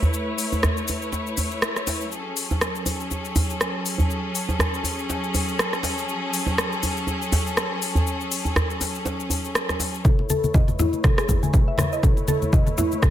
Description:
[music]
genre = afro house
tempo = 121 BPM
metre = 4/4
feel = swing 56% on 16ths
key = F# minor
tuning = A4 = 439 Hz
[part]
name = bright studio string section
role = sustained chords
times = 0.0-13.1 s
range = F#3 to C#5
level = -28 LUFS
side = left 1 dB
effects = sidechain pumping, low-pass filter
[part]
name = afro-pop drum kit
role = drums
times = 0.0-13.1 s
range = hi-hat, rim click, shaker, toms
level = -26 LUFS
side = left 1 dB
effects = none
[part]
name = djembe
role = percussion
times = 0.0-9.9 s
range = none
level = -25 LUFS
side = right 1 dB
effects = none
[part]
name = electronic kick drum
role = drums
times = 10.0-13.1 s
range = none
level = -19 LUFS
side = equal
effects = none
[part]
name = mallet-like synth pluck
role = arpeggios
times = 10.1-13.1 s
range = E4 to G#5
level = -26 LUFS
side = equal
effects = chorus, sidechain pumping, digital delay
[part]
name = congas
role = percussion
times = 10.2-13.1 s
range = none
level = -24 LUFS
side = left 1 dB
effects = none
[sound]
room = light reverb, digital ambience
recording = none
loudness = -21 LUFS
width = side -12 dB against mid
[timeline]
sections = 0.0-10.1 A section; 10.1-13.1 B section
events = build-up 10.1-13.1; drum fill 10.1-13.1; filter sweep on synth pluck 10.1-13.1; filter sweep on string section 10.1-13.1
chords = 0.0 A; 2.1 F#m; 10.1 A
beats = | 0.14 0.63 1.13 1.62 | 2.12 2.62 3.11 3.61 | 4.10 4.60 5.09 5.59 | 6.09 6.58 7.08 7.57 | 8.07 8.56 9.06 9.56 | 10.05 10.55 11.04 11.54 | 12.04 12.53 13.03

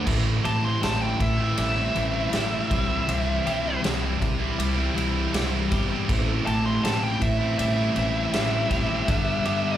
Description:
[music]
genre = quiet-loud alternative rock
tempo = 80 BPM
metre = 4/4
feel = straight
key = A minor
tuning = A4 = 442 Hz
[part]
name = twelve-string electric guitar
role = arpeggios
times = 0.0-9.8 s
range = G2 to G4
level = -32 LUFS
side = right 2 dB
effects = tremolo, digital delay
[part]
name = scooped high-gain guitar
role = riff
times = 0.0-9.8 s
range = G2 to E4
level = -30 LUFS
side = right 11 dB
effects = distortion
[part]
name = thick fuzz guitar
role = riff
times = 0.0-9.8 s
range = G2 to E4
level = -28 LUFS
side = left 5 dB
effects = distortion
[part]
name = upright bass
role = bass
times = 0.0-9.8 s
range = G1 to C2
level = -28 LUFS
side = equal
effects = none
[part]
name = huge arena drum kit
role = drums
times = 0.1-9.6 s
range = crash cymbal, kick drum, ride cymbal, snare drum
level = -29 LUFS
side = equal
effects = none
[part]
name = high-gain lead guitar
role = melody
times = 0.5-9.8 s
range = E5 to C6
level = -28 LUFS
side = equal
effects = distortion, slapback echo, digital delay
[sound]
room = small room ambience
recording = live gig heard through the venue's PA, club reverb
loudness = -22 LUFS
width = side -11 dB against mid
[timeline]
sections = 0.1-9.8 A section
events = lead electric guitar solo 0.1-9.8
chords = 0.1 Am7; 2.7 Cadd9; 6.1 Am7; 9.1 G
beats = | 0.07 0.82 1.58 2.33 | 3.08 3.84 4.59 5.34 | 6.09 6.84 7.59 8.34 | 9.08

